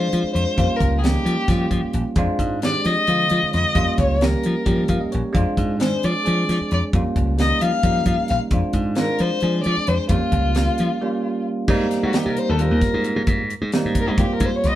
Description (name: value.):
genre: electric jazz fusion.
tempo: 265 BPM (eighths).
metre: 7/8.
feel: straight.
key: unclear.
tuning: A4 = 440 Hz.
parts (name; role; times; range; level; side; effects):
warm violin; melody; 0.0-14.8 s; Eb4 to F5; -23 LUFS; left 3 dB; none.
bell-like tine electric piano; accompaniment; 0.0-14.8 s; D3 to F5; -24 LUFS; right 2 dB; none.
slap bass; bass; 0.0-14.7 s; Bb1 to F3; -22 LUFS; equal; none.
tight funk drum kit; drums; 0.1-14.7 s; crash cymbal, hi-hat, kick drum, snare drum; -23 LUFS; equal; none.
room: moderate studio reverb, RT60 0.7 s.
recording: band playing live in one room.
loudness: -18 LUFS.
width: side -13 dB against mid.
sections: 0.0-11.7 A section; 11.7-14.8 B section.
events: tine electric piano fill 4.7-5.3; break 11.0-11.7; violin solo 11.7-14.8.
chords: 0.0 Fm6; 0.6 Eb9; 2.2 Fm13; 3.8 Bbm6; 5.3 Fm6; 6.9 Eb9; 8.5 Fm6; 10.1 Bbm6/Db; 11.7 Abmaj9.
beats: 0.14 0.36 | 0.59 0.81 1.04 1.27 1.50 1.72 1.95 | 2.17 2.40 2.63 2.85 3.08 3.31 3.53 | 3.76 3.99 4.21 4.44 4.67 4.89 5.12 | 5.35 5.57 5.80 6.03 6.25 6.48 6.71 | 6.93 7.16 7.39 7.61 7.84 8.07 8.29 | 8.52 8.75 8.97 9.20 9.43 9.65 9.88 | 10.11 10.34 10.56 10.79 11.02 11.24 11.47 | 11.70 11.92 12.15 12.38 12.60 12.83 13.05 | 13.28 13.51 13.73 13.96 14.19 14.41 14.64.